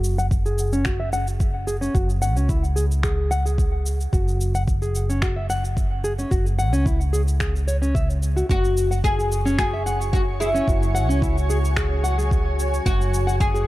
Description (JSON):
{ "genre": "organic downtempo", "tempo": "110 BPM", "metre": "4/4", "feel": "straight", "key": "unclear", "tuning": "A4 = 440 Hz", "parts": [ { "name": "nylon-string guitar", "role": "arpeggios", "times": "0.0-13.7 s", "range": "C#4 to F#5", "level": "-26 LUFS", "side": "equal", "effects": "low-pass filter, tape echo" }, { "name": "mellow fretless electric bass", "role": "bass", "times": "0.0-13.7 s", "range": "F#1 to C#2", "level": "-22 LUFS", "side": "equal", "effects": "wide subtle chorus" }, { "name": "electronic shaker and finger snaps", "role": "drums", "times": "0.0-13.7 s", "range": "none", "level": "-33 LUFS", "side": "equal", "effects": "none" }, { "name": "electronic kick drum", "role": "drums", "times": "0.3-13.5 s", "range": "none", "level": "-23 LUFS", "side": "equal", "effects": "none" }, { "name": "oud", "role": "melody", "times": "8.5-13.7 s", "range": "E4 to G#4", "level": "-26 LUFS", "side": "left 1 dB", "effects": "tape echo" }, { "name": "granular cloud pad", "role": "sustained chords", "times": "9.6-13.7 s", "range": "F#4 to D6", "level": "-30 LUFS", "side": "equal", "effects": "built-in reverb, sidechain pumping" } ], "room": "little or no reverb", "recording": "dark, warm production", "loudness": "-19 LUFS", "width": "side -17 dB against mid", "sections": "0.0-13.7 A section", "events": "filter sweep on nylon-string guitar 0.0-13.7", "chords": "0.0 F#sus2; 12.9 G#m7b5/F#" }